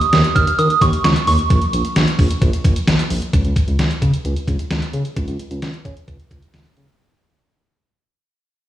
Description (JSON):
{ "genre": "synth-pop", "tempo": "131 BPM", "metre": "4/4", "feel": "straight", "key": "unclear", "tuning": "A4 = 441 Hz", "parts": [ { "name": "soft synth bell", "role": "melody", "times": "0.0-2.8 s", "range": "Db6 to F6", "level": "-18 LUFS", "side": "right 4 dB", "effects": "chorus, tape echo" }, { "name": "detuned 8-bit digital drum machine", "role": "drums", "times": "0.0-7.0 s", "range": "hi-hat, kick drum, snare drum", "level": "-18 LUFS", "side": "equal", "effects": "none" }, { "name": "smooth synth bass", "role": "bass", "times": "0.1-6.9 s", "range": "Bb1 to Db3", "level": "-19 LUFS", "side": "equal", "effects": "none" } ], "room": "light reverb, digital ambience", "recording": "played on a big sound system in a bare room, stone room reverb, small room ambience", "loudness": "-15 LUFS", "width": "side -12 dB against mid", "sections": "0.0-3.3 A section; 3.3-7.0 B section", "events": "fade-out 3.3-7.0", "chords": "0.0 Dbsus2; 1.5 Bbm; 3.3 N.C.", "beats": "0.13 0.58 1.04 | 1.50 1.96 2.42 2.88 | 3.33 3.79 4.25 4.71 | 5.17 5.62 6.08 6.54" }